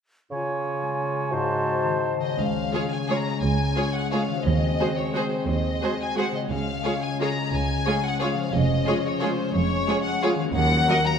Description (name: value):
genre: classical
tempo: 176 BPM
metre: 3/4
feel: uneven beats, rubato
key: Db major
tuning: A4 = 441 Hz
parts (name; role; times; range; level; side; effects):
- bright clarinet; second line; 0.3-2.2 s; F4 to Gb4; -33 LUFS; left 1 dB; none
- clear oboe; second line; 0.3-2.2 s; C5 to Db5; -32 LUFS; right 2 dB; none
- concert flute; second line; 0.3-2.2 s; Ab5 to A5; -32 LUFS; left 1 dB; none
- clear bassoon; accompaniment; 0.3-2.2 s; Ab2 to Db3; -29 LUFS; right 3 dB; none
- concert harp; arpeggios; 0.3-11.2 s; Ab2 to Bb4; -31 LUFS; left 5 dB; none
- warm chamber violin section; melody; 2.2-11.2 s; C5 to Bb5; -28 LUFS; left 3 dB; none
- mellow French horn section; sustained chords; 2.4-11.2 s; Gb3 to Db4; -30 LUFS; left 4 dB; none
- warm symphonic cello section; bass; 2.4-10.8 s; Db2 to F2; -28 LUFS; right 3 dB; none
- warm symphonic double bass section; bass; 2.4-10.8 s; F1 to Eb2; -29 LUFS; right 4 dB; none
- rich symphonic violin section; second line; 2.7-11.0 s; Ab4 to Eb5; -30 LUFS; right 1 dB; none
- warm symphonic viola section; accompaniment; 2.7-11.0 s; Gb3 to Gb4; -30 LUFS; right 2 dB; none
room: wet concert hall reverb, RT60 2.4 s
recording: none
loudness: -22 LUFS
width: side -7 dB against mid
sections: 0.3-2.4 A section; 2.4-11.2 B section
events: none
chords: 0.3 Db; 1.3 Ab7b9; 2.4 Db; 4.5 Ab7/Eb; 6.5 Db; 8.5 Db/F; 10.5 Ebm